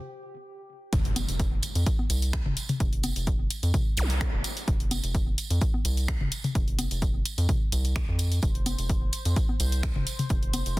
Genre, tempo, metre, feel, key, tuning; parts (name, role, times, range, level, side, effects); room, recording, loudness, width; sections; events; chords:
minimal techno; 128 BPM; 4/4; swing 53% on 16ths; A4 = 440 Hz
rubbery square bass; bass; 0.9-10.8 s; F1 to F2; -27 LUFS; equal; sidechain pumping
electronic kick drum; drums; 0.9-10.8 s; -28 LUFS; equal
house drum kit; drums; 0.9-10.8 s; finger snaps, hi-hat; -35 LUFS; left 2 dB; soft clipping on snare
tambourine; percussion; 0.9-10.8 s; -38 LUFS; right 6 dB
impact and zap; sound effects; 0.9-4.1 s; -35 LUFS; equal
electronic congas and toms; percussion; 1.2-10.6 s; -33 LUFS; left 3 dB; tape echo
bubbling stepped-filter texture; texture; 8.4-10.8 s; C5; -43 LUFS; left 2 dB; chorus, built-in reverb, sidechain pumping
little or no reverb; dense, heavily limited modern master; -24 LUFS; side -19 dB against mid
0.9-10.8 A section
stop 0.0-0.9; drop 0.9-10.8; impact 0.9-2.8
0.0 N.C.; 0.9 F5